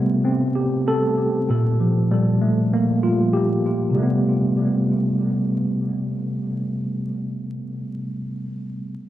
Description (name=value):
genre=hip hop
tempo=97 BPM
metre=4/4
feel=swing 58% on 16ths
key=unclear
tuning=A4 = 440 Hz
part: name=mellow tine electric piano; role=accompaniment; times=0.0-9.0 s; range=Bb2 to A4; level=-19 LUFS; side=equal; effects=medium stereo tremolo, cassette tape, high-pass filter, low-pass filter, tape echo
room=light reverb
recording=echo-heavy mix, vinyl crackle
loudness=-19 LUFS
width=side -13 dB against mid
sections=0.0-4.0 A section; 4.0-6.4 B section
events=none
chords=0.0 Am9; 1.5 Gm9; 4.0 Am9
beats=0.25 0.87 | 1.49 2.11 2.73 3.34 | 3.96 4.58 5.20 5.82